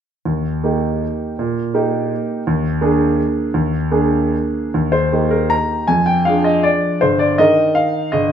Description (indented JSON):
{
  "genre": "classical, piano waltz",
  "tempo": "137-179 BPM",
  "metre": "3/4",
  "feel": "rubato",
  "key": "Eb major",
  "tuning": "A4 = 439 Hz",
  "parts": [
    { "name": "clear upright piano", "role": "solo", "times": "0.3-8.3 s", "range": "G1 to Bb5", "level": "-14 LUFS", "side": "equal", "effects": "none" }
  ],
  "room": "wet large studio reverb, RT60 1.3 s",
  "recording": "minimal, uncompressed stereo recording",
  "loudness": "-15 LUFS",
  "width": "side -8 dB against mid",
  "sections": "0.2-4.7 A section; 4.7-8.3 B section",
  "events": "none",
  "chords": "0.2 Eb; 2.5 Bb7/Eb; 4.7 Eb; 5.9 Ddim/F; 7.0 Eb/G",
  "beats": "| 0.25 0.64 1.02 | 1.39 1.75 2.11 | 2.46 2.81 3.17 | 3.54 3.91 4.32 | 4.74 5.13 5.52 | 5.89 6.27 6.66 | 7.03 7.40 7.77 | 8.14"
}